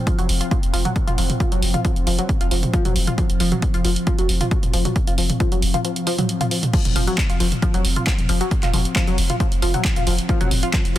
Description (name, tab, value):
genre	driving peak-time techno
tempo	135 BPM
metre	4/4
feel	straight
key	unclear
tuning	A4 = 441 Hz
part	deep dark ambient pad	drone	0.0-11.0 s	F3 to C4	-28 LUFS	left 1 dB	chorus, built-in reverb, sidechain pumping
part	tight sequenced synth	riff	0.1-11.0 s	F3 to F4	-25 LUFS	left 1 dB	chorus, phaser, tube saturation, sidechain pumping, dub echo
part	electronic kick drum	drums	0.1-10.8 s	none	-21 LUFS	equal	none
part	punchy analog drum machine	drums	0.1-11.0 s	crash cymbal, handclaps, hi-hat, toms	-24 LUFS	right 1 dB	sidechain pumping on hats, sidechain pumping on cymbals, sidechain pumping on toms
part	warm sub bass	bass	0.2-11.0 s	F1	-22 LUFS	equal	overdrive, sidechain pumping, low-pass filter
room	light reverb, digital ambience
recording	dense, heavily limited modern master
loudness	-17 LUFS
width	side -13 dB against mid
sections	0.0-6.7 A section; 6.7-11.0 B section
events	kick drops out 5.8-6.7; drop 6.7-11.0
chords	0.0 F5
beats	0.07 0.51 0.96 | 1.40 1.85 2.29 2.73 | 3.18 3.62 4.07 4.51 | 4.96 5.40 5.85 6.29 | 6.74 7.18 7.62 8.07 | 8.51 8.96 9.40 9.85 | 10.29 10.73